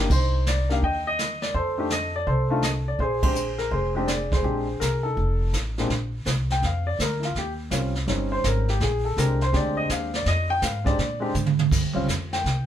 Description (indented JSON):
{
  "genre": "jazz piano trio",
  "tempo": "165 BPM",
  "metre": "4/4",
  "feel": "swing 66% on 8ths",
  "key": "Bb mixolydian",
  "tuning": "A4 = 439 Hz",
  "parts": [
    { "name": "warm upright piano", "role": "melody", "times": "0.0-12.7 s", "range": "Bb2 to G5", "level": "-26 LUFS", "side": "left 1 dB", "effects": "none" },
    { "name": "upright bass", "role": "bass", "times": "0.0-12.7 s", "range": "F1 to Bb2", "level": "-26 LUFS", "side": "equal", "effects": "none" },
    { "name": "jazz brush drum kit", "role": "drums", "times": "0.1-12.7 s", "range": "brushed snare drum, crash cymbal, hi-hat, kick drum, ride cymbal, snare drum, toms", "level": "-27 LUFS", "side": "right 2 dB", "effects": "none" }
  ],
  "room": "moderate studio reverb, RT60 0.5 s",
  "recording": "band playing live in one room",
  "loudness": "-22 LUFS",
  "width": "side -10 dB against mid",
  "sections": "0.0-5.9 A section; 5.9-12.7 B section",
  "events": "band accent 3.2; upright piano solo 5.9-12.7; drum fill 11.3-11.7",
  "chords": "0.1 Cm; 1.5 F13; 3.0 Bb9; 5.2 F7; 5.9 Bbadd9; 7.3 Eb13; 8.8 Bb13; 10.3 Fm; 11.0 Bb7; 11.7 Eb13"
}